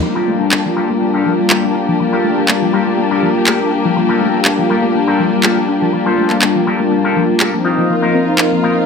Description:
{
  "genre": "nu-disco, nu disco",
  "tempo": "122 BPM",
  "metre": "4/4",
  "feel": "straight",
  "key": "G minor",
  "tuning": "A4 = 440 Hz",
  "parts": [
    { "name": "warm analog pad", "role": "accompaniment", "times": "0.0-8.9 s", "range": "F3 to A5", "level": "-14 LUFS", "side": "left 2 dB", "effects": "chorus, tape echo" },
    { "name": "muted studio string section", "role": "sustained chords", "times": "0.0-8.9 s", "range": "Bb3 to F5", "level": "-21 LUFS", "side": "left 2 dB", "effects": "none" },
    { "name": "soft round pluck", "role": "arpeggios", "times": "0.0-8.8 s", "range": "F3 to F4", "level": "-21 LUFS", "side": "left 2 dB", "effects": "ensemble chorus, tape echo" },
    { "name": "electric guitar with an envelope filter", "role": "riff", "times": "0.0-8.8 s", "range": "Eb4 to C5", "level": "-22 LUFS", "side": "left 3 dB", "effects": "wide subtle chorus, low-pass filter, tape echo" },
    { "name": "electronic handclaps", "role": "drums", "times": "0.5-8.5 s", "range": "none", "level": "-16 LUFS", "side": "right 1 dB", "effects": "small room ambience" }
  ],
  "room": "moderate plate reverb, RT60 1.4 s",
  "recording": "none",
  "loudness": "-12 LUFS",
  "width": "side -5 dB against mid",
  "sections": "0.0-8.9 A section",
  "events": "none",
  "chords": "0.0 Gm9; 7.6 F7sus4",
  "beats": "| 0.03 0.52 1.01 1.50 | 1.99 2.48 2.98 3.47 | 3.96 4.45 4.94 5.43 | 5.93 6.42 6.91 7.40 | 7.89 8.38"
}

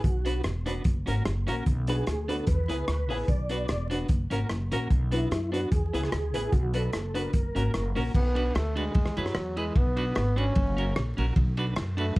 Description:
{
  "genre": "ska",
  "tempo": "148 BPM",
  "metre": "4/4",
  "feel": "swing 54% on 8ths",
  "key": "B dorian",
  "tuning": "A4 = 440 Hz",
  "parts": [
    { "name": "mellow tonewheel organ", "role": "melody", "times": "0.0-7.9 s", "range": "E4 to D5", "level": "-34 LUFS", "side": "right 1 dB", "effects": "chorus vibrato, slow rotary speaker, slapback echo, plate reverb" },
    { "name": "upright bass", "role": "bass", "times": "0.0-12.2 s", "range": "E1 to F#2", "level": "-29 LUFS", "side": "equal", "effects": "none" },
    { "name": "crunchy breakbeat drum kit", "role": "drums", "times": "0.0-12.2 s", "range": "crash cymbal, hi-hat, kick drum, ride cymbal, rim click", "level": "-28 LUFS", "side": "equal", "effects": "none" },
    { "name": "clean electric guitar", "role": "accompaniment", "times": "0.2-12.1 s", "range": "C#4 to B4", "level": "-34 LUFS", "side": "right 2 dB", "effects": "tremolo, plate reverb" },
    { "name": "honky-tonk upright piano", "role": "stabs", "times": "0.3-8.1 s", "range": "A#3 to B4", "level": "-36 LUFS", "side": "left 3 dB", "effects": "plate reverb" },
    { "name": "clear trombone", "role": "melody", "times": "8.2-12.2 s", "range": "F#3 to C#4", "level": "-31 LUFS", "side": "equal", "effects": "slapback echo, plate reverb" }
  ],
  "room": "light reverb",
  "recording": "dark, warm production, vinyl crackle",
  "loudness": "-25 LUFS",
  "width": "side -20 dB against mid",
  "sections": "0.0-8.1 A section; 8.1-12.2 B section",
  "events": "trombone solo 8.1-12.2",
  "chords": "0.0 Bm; 0.8 F#; 1.7 Bm; 2.5 E; 3.3 Bm; 4.1 F#; 4.9 Bm; 5.7 E; 6.5 Bm; 7.3 F#; 8.1 Bm; 9.0 E; 9.8 Bm; 10.6 F#; 11.4 Bm",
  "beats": "| 0.04 0.44 0.85 1.26 | 1.66 2.07 2.47 2.88 | 3.28 3.69 4.09 4.50 | 4.91 5.31 5.72 6.12 | 6.53 6.93 7.34 7.74 | 8.14 8.55 8.95 9.35 | 9.76 10.16 10.56 10.96 | 11.37 11.77 12.17"
}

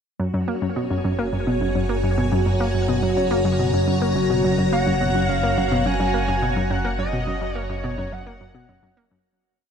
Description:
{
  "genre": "ambient, sequencer-driven space music",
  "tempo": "106 BPM",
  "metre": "4/4",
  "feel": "straight",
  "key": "F# major",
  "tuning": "A4 = 441 Hz",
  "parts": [
    { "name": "string machine, full ensemble", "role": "sustained chords", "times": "0.2-9.3 s", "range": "F#4 to A#5", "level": "-24 LUFS", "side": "equal", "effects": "phaser, ensemble chorus" },
    { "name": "analog pluck", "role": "riff", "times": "0.2-9.2 s", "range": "F#2 to A#3", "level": "-24 LUFS", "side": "equal", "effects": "chorus, analog delay" },
    { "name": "analog drone", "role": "bass", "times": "1.2-9.2 s", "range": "F#1", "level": "-25 LUFS", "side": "equal", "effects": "chorus" },
    { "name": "pulse-width lead", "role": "melody", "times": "4.7-9.0 s", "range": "C#5 to G#5", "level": "-26 LUFS", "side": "equal", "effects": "chorus, analog delay" }
  ],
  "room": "wet huge ambient reverb, RT60 7.7 s",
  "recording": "dark, warm production",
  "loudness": "-19 LUFS",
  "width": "side -7 dB against mid",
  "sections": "0.2-9.3 A section",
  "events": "fade-out 6.2-9.3",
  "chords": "0.2 F#add9",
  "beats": "| 0.20 0.76 1.33 1.90 | 2.46 3.03 3.59 4.16 | 4.73 5.29 5.86 6.42 | 6.99 7.56 8.12 8.69"
}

